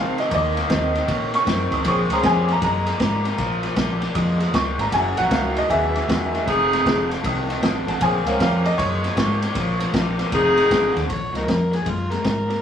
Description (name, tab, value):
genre	electric blues shuffle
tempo	156 BPM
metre	4/4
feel	swing 65% on 8ths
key	Bb minor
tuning	A4 = 440 Hz
part	bright upright piano	second line	0.0-9.9 s	Ab4 to Eb6	-24 LUFS	equal	none
part	overdriven electric guitar	riff	0.0-12.6 s	F2 to Db4	-25 LUFS	left 1 dB	spring reverb
part	vintage muted fingered electric bass	bass	0.0-12.5 s	F1 to Db3	-25 LUFS	equal	none
part	vintage drum kit	drums	0.2-12.6 s	kick drum, ride cymbal, snare drum	-25 LUFS	equal	none
part	dark saxophone section	stabs	1.9-2.5, 4.9-11.0 s	A3 to Bb4	-20 LUFS	left 1 dB	none
part	overdriven harmonica	melody	11.1-12.6 s	Eb4 to Db5	-26 LUFS	left 1 dB	none
room	wet booth ambience, RT60 0.3 s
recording	rough rehearsal-room recording, tube saturation, small room ambience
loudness	-18 LUFS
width	side -8 dB against mid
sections	0.0-11.1 A section; 11.1-12.6 B section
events	upright piano solo 0.0-11.1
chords	0.0 Eb7(no3); 1.9 Bbm9; 4.9 Gb7; 6.5 F7#9; 8.0 Bbm9; 10.3 F7#9; 11.1 Bb7(no3)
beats	| 0.31 0.69 1.08 1.47 | 1.85 2.24 2.62 3.01 | 3.39 3.78 4.16 4.54 | 4.93 5.32 5.70 6.08 | 6.47 6.85 7.24 7.62 | 8.01 8.39 8.77 9.16 | 9.54 9.93 10.31 10.70 | 11.08 11.47 11.85 12.24